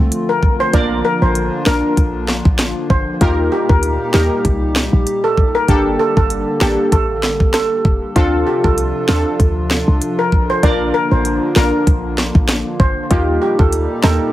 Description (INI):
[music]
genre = dancehall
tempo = 97 BPM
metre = 4/4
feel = swing 56% on 16ths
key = unclear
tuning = A4 = 444 Hz
[part]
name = hollow soft pad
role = sustained chords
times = 0.0-14.3 s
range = Bb2 to A4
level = -22 LUFS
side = equal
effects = chorus, sidechain pumping
[part]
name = short 808-style bass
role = bass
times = 0.0-14.2 s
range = F1 to Eb2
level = -17 LUFS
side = equal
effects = none
[part]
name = island pop drum kit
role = drums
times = 0.1-14.2 s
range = hi-hat, kick drum, rim click, snare drum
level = -16 LUFS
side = equal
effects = none
[part]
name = steel pan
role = melody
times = 0.3-14.3 s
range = F4 to D5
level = -18 LUFS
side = equal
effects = plate reverb, tape echo
[part]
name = synth brass stab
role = accompaniment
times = 0.7-14.3 s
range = Bb3 to Bb4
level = -19 LUFS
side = equal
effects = chorus
[sound]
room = moderate studio reverb, RT60 0.6 s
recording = heavily compressed radio sound, multiband compression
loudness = -13 LUFS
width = side -14 dB against mid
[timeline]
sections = 0.0-14.3 A section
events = none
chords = 0.0 Dm7; 0.7 Bb; 3.2 Eb; 5.7 Gmadd9; 8.2 Dm7; 10.6 Bb; 13.1 Eb